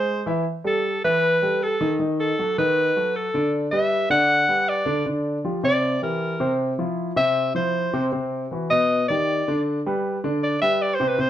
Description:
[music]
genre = jazz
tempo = 157 BPM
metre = 4/4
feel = straight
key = unclear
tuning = A4 = 440 Hz
[part]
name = clear alto saxophone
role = melody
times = 0.0-11.3 s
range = A4 to F#5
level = -21 LUFS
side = equal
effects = plate reverb
[part]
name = warm concert grand piano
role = accompaniment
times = 0.0-11.3 s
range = B2 to E5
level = -24 LUFS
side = equal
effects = none
[sound]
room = moderate studio reverb, RT60 0.5 s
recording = dark, warm production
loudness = -20 LUFS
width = side -11 dB against mid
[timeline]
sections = 0.5-11.3 A section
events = alto saxophone solo 0.0-11.3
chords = 0.5 Asus2; 2.0 B7; 3.5 Em9; 5.1 G5; 5.8 C7; 6.6 F5; 8.1 Cmaj7#11; 8.9 Baug; 9.7 Cmaj7sus2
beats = 0.08 | 0.46 0.85 1.23 1.61 | 2.00 2.38 2.77 3.15 | 3.53 3.92 4.30 4.68 | 5.06 5.45 5.83 6.21 | 6.59 6.98 7.36 7.74 | 8.12 8.51 8.89 9.27 | 9.65 10.04 10.42 10.80 | 11.18

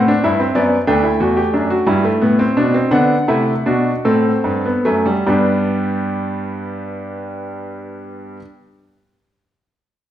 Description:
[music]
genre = classical, baroque-style 4-part fugue for grand piano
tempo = 46-64 BPM (dotted quarters)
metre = 12/8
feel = straight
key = G major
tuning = A4 = 441 Hz
[part]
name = bright grand piano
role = solo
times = 0.0-8.4 s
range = D2 to G5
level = -15 LUFS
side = equal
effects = none
[sound]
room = wet stone room reverb, RT60 1.2 s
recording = dark, warm production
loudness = -14 LUFS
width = side -11 dB against mid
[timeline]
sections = 0.0-5.3 A section; 5.3-10.1 B section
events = slowing down 0.0-5.3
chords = 0.0 C; 0.9 G/D; 2.9 D7; 5.3 G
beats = | 0.88 1.88 2.92 4.05 | 5.29 6.57 7.86

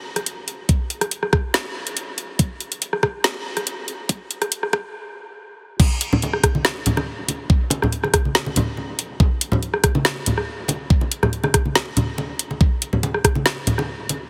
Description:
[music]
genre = dubstep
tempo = 141 BPM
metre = 4/4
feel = half-time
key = none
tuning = none
[part]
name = garage drum kit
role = drums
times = 0.2-14.2 s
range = crash cymbal, hi-hat, rim click, snare drum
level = -24 LUFS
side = equal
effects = none
[part]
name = electronic kick drum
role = drums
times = 0.7-13.3 s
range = none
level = -20 LUFS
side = equal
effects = none
[part]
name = congas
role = percussion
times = 5.8-14.2 s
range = none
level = -25 LUFS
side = equal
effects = dub echo
[sound]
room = light reverb, digital ambience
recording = heavily compressed radio sound, high-pass filter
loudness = -21 LUFS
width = mono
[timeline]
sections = 0.0-5.8 A section; 5.8-14.3 B section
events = build-up 0.0-5.8; stop 4.9-5.8; drop 5.8-14.3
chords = none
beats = 0.27 | 0.69 1.12 1.54 1.97 | 2.39 2.82 3.24 3.67 | 4.09 4.52 4.95 5.37 | 5.80 6.22 6.65 7.07 | 7.50 7.92 8.35 8.78 | 9.20 9.63 10.05 10.48 | 10.90 11.33 11.75 12.18 | 12.61 13.03 13.46 13.88

